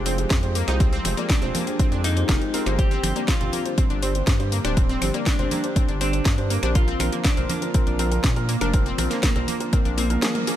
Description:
progressive house; 121 BPM; 4/4; straight; A4 = 441 Hz
airy breathy pad; sustained chords; 0.0-10.6 s; D3 to Ab4; -34 LUFS; left 1 dB; chorus, sidechain pumping
felt-muted upright piano; stabs; 0.0-10.6 s; F3 to D5; -30 LUFS; right 2 dB; vintage 12-bit sampler grit, sidechain pumping, dub echo
round analog bass; bass; 0.0-10.2 s; D1 to Bb2; -25 LUFS; equal; sidechain pumping
analog pluck; arpeggios; 0.1-10.5 s; Bb3 to Eb4; -30 LUFS; left 2 dB; chorus, sidechain pumping, dub echo
house drum kit; drums; 0.1-10.6 s; finger snaps, hi-hat, snare drum, toms; -28 LUFS; left 1 dB; overdrive
electronic kick drum; drums; 0.3-9.8 s; -21 LUFS; equal; overdrive
congas; percussion; 1.0-9.8 s; -33 LUFS; right 4 dB; sidechain pumping on perc
clean electric guitar; melody; 1.3-10.6 s; Bb3 to G4; -31 LUFS; left 1 dB; sidechain pumping, tape echo
airy dreamy lead; second line; 1.3-10.6 s; Bb3 to G4; -37 LUFS; equal
digital ambience; -19 LUFS; side -12 dB against mid
0.0-10.6 A section
drum fill 10.0-10.6; band accent 10.2
0.0 Fmadd9; 2.8 Gsus4; 6.8 Bb

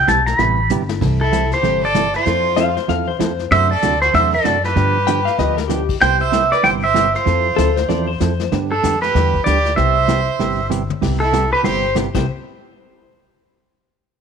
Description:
country, western swing; 192 BPM; 4/4; swing 61% on 8ths; C major; A4 = 439 Hz
pedal steel guitar; melody; 0.0-12.0 s; A4 to B5; -16 LUFS; right 1 dB
upright bass; bass; 0.0-12.3 s; G1 to G2; -21 LUFS; left 2 dB
hollow-body jazz guitar; accompaniment; 0.1-12.3 s; C3 to A4; -22 LUFS; right 10 dB
vintage brush drum kit; drums; 0.1-12.2 s; brushed snare drum, crash cymbal, hi-hat, kick drum, snare drum, toms; -26 LUFS; left 9 dB
bright fiddle; second line; 1.2-12.0 s; D4 to C5; -25 LUFS; right 11 dB
clean lap steel guitar; second line; 2.6-8.6, 12.1-12.3 s; G4 to G5; -22 LUFS; left 15 dB
light reverb, studio reverb; 1960s-style stereo with parts hard left and right; -14 LUFS; side -6 dB against mid
0.0-1.0 A section; 1.0-11.0 B section; 11.0-12.3 C section; 12.3-13.5 D section
pedal steel guitar solo 0.0-1.0; drum fill 0.7-1.0, 5.4-5.7, 10.7-11.0
0.0 Cmaj7; 1.0 C6; 2.3 Fmaj7; 3.5 D7; 4.8 G7; 6.0 Cmaj7; 7.3 Fmaj7; 8.5 G; 9.8 Cmaj7; 12.3 N.C.

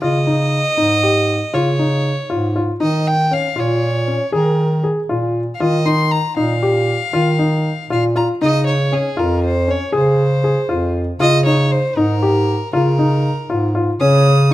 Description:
contemporary instrumental, chamber music in an uneven meter; 236 BPM (eighths); 11/8; straight; A4 = 441 Hz
warm violin; melody; 0.0-14.5 s; Ab4 to Eb6; -20 LUFS; right 1 dB
dark grand piano; arpeggios; 0.0-14.5 s; Db4 to Ab4; -19 LUFS; left 2 dB
mellow bass clarinet; bass; 0.0-14.5 s; F2 to Eb3; -17 LUFS; equal
light reverb; close, detailed microphones; -14 LUFS; side -15 dB against mid
0.0-14.0 A section
0.0 Dbadd9; 2.8 Ebsus2; 8.4 Bbm9/F (rootless); 11.2 Db69; 14.0 N.C.

